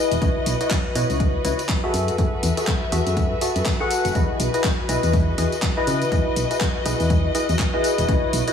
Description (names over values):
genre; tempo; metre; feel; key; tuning
piano house; 122 BPM; 4/4; swing 59% on 16ths; E major; A4 = 436 Hz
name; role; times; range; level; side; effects
percussive organ stab; riff; 0.0-8.5 s; E4 to F#5; -23 LUFS; left 1 dB; analog chorus, sidechain pumping, analog delay
dark studio string section; texture; 0.0-8.5 s; F#4 to E5; -29 LUFS; left 3 dB; sidechain pumping
solid FM bass; bass; 0.1-8.4 s; E1 to C#3; -23 LUFS; equal; sidechain pumping
garage drum kit; drums; 0.1-8.5 s; handclaps, hi-hat, tambourine; -28 LUFS; left 1 dB; overdrive, studio reverb
electronic kick drum; drums; 0.2-8.2 s; none; -24 LUFS; equal; studio reverb
room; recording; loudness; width
moderate plate reverb, RT60 1.8 s, digital ambience; dreamy mix soaked in reverb, small room ambience; -19 LUFS; side -8 dB against mid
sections
0.0-8.5 A section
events
none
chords
0.2 C#m9; 1.9 F#m9; 4.2 Emaj7